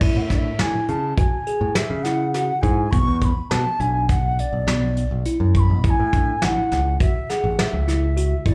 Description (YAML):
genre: progressive instrumental, band music in an uneven meter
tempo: 103 BPM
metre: 5/4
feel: straight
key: A major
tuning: A4 = 440 Hz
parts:
  - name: wooden flute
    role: melody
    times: 0.0-8.5 s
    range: D5 to C#6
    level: -28 LUFS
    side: equal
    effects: slapback echo
  - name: bell-like tine electric piano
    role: arpeggios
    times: 0.0-8.5 s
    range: B3 to G#4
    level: -29 LUFS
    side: equal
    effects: none
  - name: modern bright picked electric bass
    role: bass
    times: 0.0-8.5 s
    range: G#1 to C#3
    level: -24 LUFS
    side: equal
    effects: none
  - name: soft brush drum kit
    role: drums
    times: 0.0-8.5 s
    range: crash cymbal, hi-hat, kick drum, snare drum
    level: -25 LUFS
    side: equal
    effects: none
room: light reverb, studio ambience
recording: live gig heard through the venue's PA, club reverb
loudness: -21 LUFS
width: mono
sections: 0.0-8.5 A section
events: none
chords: 0.0 Amaj7; 2.9 Bm; 5.8 Amaj7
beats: | 0.02 0.60 1.18 1.76 2.34 | 2.93 3.51 4.09 4.67 5.26 | 5.84 6.42 7.00 7.59 8.17